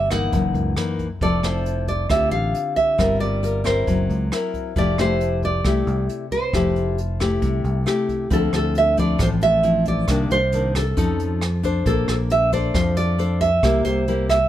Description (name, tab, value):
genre	bossa nova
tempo	135 BPM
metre	4/4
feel	straight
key	F major, D minor from 8.3 s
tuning	A4 = 441 Hz
part	nylon-string guitar	melody	0.0-14.5 s	A4 to Gb5	-22 LUFS	right 2 dB	none
part	nylon-string guitar	accompaniment	0.0-14.5 s	Gb2 to C5	-23 LUFS	left 3 dB	none
part	fingered electric bass	bass	0.0-14.5 s	F1 to F2	-23 LUFS	right 1 dB	none
part	jazz brush drum kit	drums	0.1-14.4 s	hi-hat, kick drum, rim click	-28 LUFS	equal	none
room	little or no reverb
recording	none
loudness	-18 LUFS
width	side -12 dB against mid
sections	0.0-8.3 A section; 8.3-14.5 B section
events	none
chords	0.3 Gb6; 1.2 Fmaj7; 2.1 Dm7; 3.0 Gm7; 3.9 Gb7#11; 4.8 Fmaj9; 8.3 Dm9; 10.1 Cm9; 11.0 F7b13; 11.9 Bbmaj9; 13.6 C7